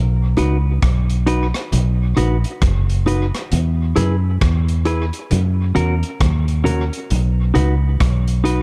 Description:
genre	roots reggae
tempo	67 BPM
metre	4/4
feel	swing 60% on 16ths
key	B major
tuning	A4 = 437 Hz
part	fingered electric bass	bass	0.0-8.6 s	F#1 to F#2	-19 LUFS	equal	none
part	clean electric guitar	accompaniment	0.4-8.6 s	C#4 to B4	-24 LUFS	equal	tape echo
part	crunchy breakbeat drum kit	drums	0.4-8.6 s	hi-hat, kick drum, rim click	-25 LUFS	equal	none
part	congas	percussion	0.4-7.8 s	none	-29 LUFS	equal	none
room	light reverb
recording	dark, warm production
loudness	-18 LUFS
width	mono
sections	0.0-8.6 A section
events	none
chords	0.0 B; 3.5 E; 5.3 F#; 7.1 B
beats	0.83 1.72 2.62 | 3.52 4.41 5.31 6.21 | 7.10 8.00

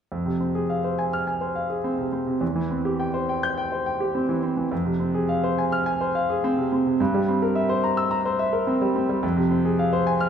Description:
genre	classical, virtuoso piano study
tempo	105 BPM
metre	4/4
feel	rubato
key	F minor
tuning	A4 = 438 Hz
part	warm concert grand piano	solo	0.1-10.3 s	E2 to G6	-21 LUFS	equal	none
room	moderate recital hall reverb, RT60 1.3 s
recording	minimal, uncompressed stereo recording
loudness	-21 LUFS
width	side -8 dB against mid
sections	0.1-10.3 A section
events	none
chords	0.1 Fm; 2.4 C/E; 4.7 Fm; 7.0 C7/G; 9.2 Fm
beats	| 0.12 0.69 1.27 1.84 | 2.41 2.99 3.57 4.14 | 4.71 5.29 5.86 6.43 | 7.00 7.55 8.10 8.67 | 9.22 9.78

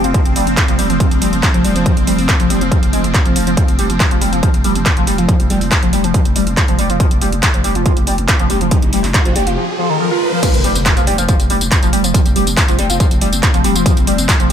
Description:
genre	driving peak-time techno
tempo	140 BPM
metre	4/4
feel	straight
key	unclear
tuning	A4 = 440 Hz
part	overdriven synth lead	riff	0.0-14.5 s	Eb3 to F4	-18 LUFS	equal	phaser, wide subtle chorus, sidechain pumping, tape echo
part	growling 808-style bass	bass	0.0-14.5 s	F1	-20 LUFS	equal	tube saturation, sidechain pumping, low-pass filter
part	swarming drone	drone	0.0-14.5 s	F3 to C4	-23 LUFS	equal	built-in reverb, sidechain pumping
part	techno drum kit	drums	0.0-14.5 s	crash cymbal, handclaps, hi-hat, tambourine	-19 LUFS	right 1 dB	overdrive, small room reverb
part	electronic kick drum	drums	0.1-14.4 s	none	-14 LUFS	equal	distortion, overdrive, small room reverb
part	riser and impact	sound effects	8.2-12.1 s	none	-22 LUFS	equal	none
room	light reverb, digital ambience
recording	none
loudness	-11 LUFS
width	side -9 dB against mid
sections	0.0-10.4 A section; 10.4-14.5 B section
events	riser 8.2-10.4; break 9.6-10.4; drop 10.4-14.5; impact 10.4-12.1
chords	0.0 F5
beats	| 0.14 0.57 1.00 1.43 | 1.86 2.29 2.71 3.14 | 3.57 4.00 4.43 4.86 | 5.29 5.71 6.14 6.57 | 7.00 7.43 7.86 8.29 | 8.71 9.14 9.57 10.00 | 10.43 10.86 11.29 11.71 | 12.14 12.57 13.00 13.43 | 13.86 14.29

